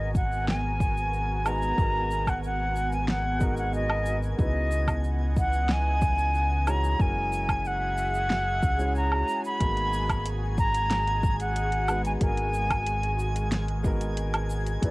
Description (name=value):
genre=sunset chillout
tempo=92 BPM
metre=4/4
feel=straight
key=G# minor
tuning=A4 = 440 Hz
part: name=bright concert flute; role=melody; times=0.0-14.9 s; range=D#5 to B5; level=-28 LUFS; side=equal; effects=tape echo
part: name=dark grand piano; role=accompaniment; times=0.0-14.9 s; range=G#3 to C#5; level=-36 LUFS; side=equal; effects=auto-pan, low-pass filter
part: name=lush unison pad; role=sustained chords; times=0.0-14.9 s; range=E3 to G#5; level=-37 LUFS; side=equal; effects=chorus, phaser, vintage 12-bit sampler grit
part: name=round analog bass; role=bass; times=0.0-14.9 s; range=F#1 to C#2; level=-28 LUFS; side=equal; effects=tube saturation
part: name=twinkling granular texture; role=texture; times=0.0-14.9 s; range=G#5 to G#6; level=-43 LUFS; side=equal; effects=built-in reverb
part: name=electronic kick drum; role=drums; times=0.1-14.9 s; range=none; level=-27 LUFS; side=equal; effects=none
part: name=deep house drum kit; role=drums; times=0.2-14.9 s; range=cabasa, hi-hat, snare drum, woodblock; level=-31 LUFS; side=equal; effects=none
room=light reverb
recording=home recording on cassette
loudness=-24 LUFS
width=side -22 dB against mid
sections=0.0-14.9 A section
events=none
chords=0.0 G#m9; 4.4 C#m11; 7.0 F#9; 9.6 G#m9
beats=0.48 1.13 | 1.78 2.43 3.08 3.74 | 4.39 5.04 5.69 6.35 | 7.00 7.65 8.30 8.95 | 9.61 10.26 10.91 11.56 | 12.21 12.87 13.52 14.17 | 14.82